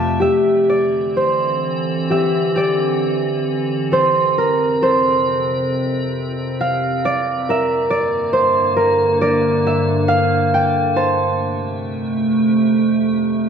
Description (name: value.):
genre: celtic folk, Celtic slow air.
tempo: 61-70 BPM.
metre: 4/4.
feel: rubato.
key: unclear.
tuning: A4 = 440 Hz.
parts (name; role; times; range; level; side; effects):
concert harp; accompaniment; 0.0-13.5 s; F2 to A5; -16 LUFS; right 1 dB; none.
icy glass pad; sustained chords; 0.0-13.5 s; F2 to C4; -20 LUFS; right 1 dB; chorus, built-in reverb.
room: moderate concert hall reverb, RT60 1.8 s.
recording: none.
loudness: -15 LUFS.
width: side -7 dB against mid.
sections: 0.2-13.5 A section.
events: harp solo 0.2-13.5.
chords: 0.2 Cadd9; 3.9 F; 7.5 Gm; 11.0 F.